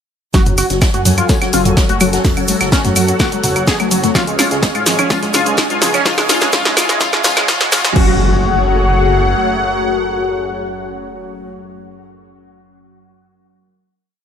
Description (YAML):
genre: melodic techno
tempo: 126 BPM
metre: 4/4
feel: straight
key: F# harmonic minor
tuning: A4 = 444 Hz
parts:
  - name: resonant sweep polysynth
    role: melody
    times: 0.3-11.5 s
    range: F#3 to G#4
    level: -19 LUFS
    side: left 3 dB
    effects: chorus, sidechain pumping, dub echo
  - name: soft supersaw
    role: second line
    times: 0.3-11.5 s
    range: F#4 to G#5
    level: -24 LUFS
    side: equal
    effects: sidechain pumping, low-pass filter, tape echo
  - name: lush unison pad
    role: sustained chords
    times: 0.3-11.5 s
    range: A3 to G#5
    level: -23 LUFS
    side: right 1 dB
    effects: chorus, phaser, sidechain pumping
  - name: soft round pluck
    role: arpeggios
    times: 0.3-8.2 s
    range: E#3 to A4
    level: -23 LUFS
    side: equal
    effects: lush chorus, sidechain pumping, tape echo
  - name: synth brass stab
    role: stabs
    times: 0.3-11.5 s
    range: C#3 to F#4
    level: -26 LUFS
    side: left 3 dB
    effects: chorus, sidechain pumping, tape echo
  - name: dark detuned saw bass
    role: bass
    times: 0.3-9.3 s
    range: F#1 to F#2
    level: -20 LUFS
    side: equal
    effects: sidechain pumping
  - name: overtone-sweeping drone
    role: drone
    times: 0.7-11.5 s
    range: F#2 to F#3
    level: -28 LUFS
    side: right 1 dB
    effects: none
  - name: electronic kick drum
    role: drums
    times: 0.3-8.1 s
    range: none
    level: -15 LUFS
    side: equal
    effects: overdrive
  - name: punchy analog drum machine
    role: drums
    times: 0.3-8.1 s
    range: claves, crash cymbal, hi-hat, snare drum, toms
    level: -16 LUFS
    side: equal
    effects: sidechain pumping on hats, sidechain pumping on toms, sidechain pumping on perc, sidechain pumping on cymbals
  - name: soft-mallet drum kit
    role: drums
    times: 0.3-8.0 s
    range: hi-hat, snare drum, tambourine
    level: -27 LUFS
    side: right 1 dB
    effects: none
  - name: cabasa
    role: percussion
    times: 0.3-7.9 s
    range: none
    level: -24 LUFS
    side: right 6 dB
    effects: none
  - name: riser and impact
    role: sound effects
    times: 2.3-11.5 s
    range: none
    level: -24 LUFS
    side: right 1 dB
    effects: none
room: light reverb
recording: high-pass filter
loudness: -11 LUFS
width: side -8 dB against mid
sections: 0.3-8.0 build; 8.0-11.8 final chord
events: build-up 0.3-8.0; drum fill 0.3-8.0; filter sweep on synth arpeggio sound 0.3-8.0; filter sweep on analog polysynth 0.3-8.0; filter sweep on supersaw synth 0.3-8.0; filter sweep on synth stab 0.3-8.0; filter sweep 0.3-8.0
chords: 0.3 F#madd9; 4.2 C#; 8.0 F#madd9